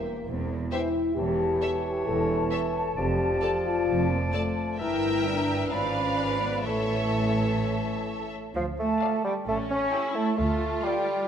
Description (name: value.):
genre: cinematic.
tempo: 132 BPM.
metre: 4/4.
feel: straight.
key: D minor.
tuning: A4 = 440 Hz.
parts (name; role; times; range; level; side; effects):
mellow French horn section; sustained chords; 0.0-11.0 s; A3 to A4; -29 LUFS; left 3 dB; none.
rich studio cello section; bass; 0.3-11.3 s; E2 to C#4; -32 LUFS; right 3 dB; none.
rich studio double bass section; bass; 0.3-10.7 s; E1 to D2; -33 LUFS; right 3 dB; none.
rich studio violin section; melody; 0.7-11.2 s; E5 to A5; -37 LUFS; left 4 dB; none.
bright clarinet; second line; 0.7-8.3 s; C5 to E5; -37 LUFS; left 1 dB; none.
clear studio violin section; second line; 0.7-11.2 s; A4 to E5; -39 LUFS; left 3 dB; none.
large flute ensemble; second line; 0.7-11.3 s; F5 to C#6; -34 LUFS; equal; none.
rich studio viola section; accompaniment; 0.7-11.3 s; C#4 to B4; -36 LUFS; equal; none.
warm bassoon; accompaniment; 0.7-11.3 s; E3 to C#4; -32 LUFS; right 1 dB; none.
room: wet scoring stage reverb, RT60 1.7 s.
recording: none.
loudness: -24 LUFS.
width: side -8 dB against mid.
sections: 0.0-8.5 A section; 8.5-11.3 B section.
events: none.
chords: 0.0 C/E; 1.2 A7/E; 3.0 Dm/F; 4.8 Edim/G; 5.7 G#dim7; 6.7 A; 8.5 Dm; 9.5 A7; 10.4 Dm.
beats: 0.26 0.71 | 1.16 1.62 2.07 2.52 | 2.97 3.42 3.87 4.33 | 4.79 5.25 5.71 6.18 | 6.65 7.12 7.60 8.07 | 8.55 9.01 9.47 9.93 | 10.38 10.84.